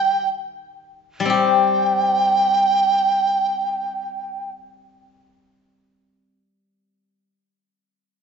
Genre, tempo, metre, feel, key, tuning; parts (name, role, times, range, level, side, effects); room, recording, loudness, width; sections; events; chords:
chinese traditional, Chinese chamber ensemble; free time; A4 = 440 Hz
mellow large dizi; melody; 0.0-4.5 s; G5; -18 LUFS; right 2 dB
steel-string zither; accompaniment; 0.0-7.3 s; G3 to G4; -20 LUFS; left 7 dB
moderate recital hall reverb, RT60 1.7 s; recorded in a church or concert hall, nothing above 7.7 kHz; -17 LUFS; side -6 dB against mid
0.0-1.3 A section; 1.3-5.7 B section
slowing down 0.0-1.3